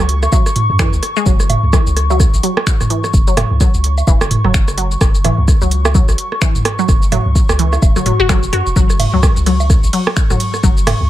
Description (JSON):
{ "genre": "minimal techno", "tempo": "128 BPM", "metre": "4/4", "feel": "swing 59% on 16ths", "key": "unclear", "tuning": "A4 = 440 Hz", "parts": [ { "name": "punchy sub bass", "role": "bass", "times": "0.0-11.1 s", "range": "E1 to F#2", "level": "-16 LUFS", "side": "equal", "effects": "sidechain pumping" }, { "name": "warbly tape-like pad", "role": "texture", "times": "0.0-11.1 s", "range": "C#6", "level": "-24 LUFS", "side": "equal", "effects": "chorus, built-in reverb, sidechain pumping" }, { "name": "minimal click drum kit", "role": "drums", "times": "0.1-11.0 s", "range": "finger snaps, hi-hat, ride cymbal, shaker", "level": "-23 LUFS", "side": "equal", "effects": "none" }, { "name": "booming analog drum machine", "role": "percussion", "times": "0.2-11.0 s", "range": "cowbell, rim click, toms, woodblock", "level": "-18 LUFS", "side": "right 2 dB", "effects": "digital delay" }, { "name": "resonant blip pluck", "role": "riff", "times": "0.3-10.7 s", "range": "E3 to F#4", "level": "-20 LUFS", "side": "left 2 dB", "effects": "chorus, phaser, sidechain pumping, tape echo" }, { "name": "electronic kick drum", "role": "drums", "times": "0.3-10.7 s", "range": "none", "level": "-13 LUFS", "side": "equal", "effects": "none" } ], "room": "little or no reverb", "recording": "none", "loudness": "-11 LUFS", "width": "side -14 dB against mid", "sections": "0.0-11.1 A section", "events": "none", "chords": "0.0 F#5", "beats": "0.32 0.79 | 1.26 1.73 2.20 2.67 | 3.14 3.60 4.07 4.54 | 5.01 5.48 5.95 6.42 | 6.89 7.36 7.82 8.29 | 8.76 9.23 9.70 10.17 | 10.64" }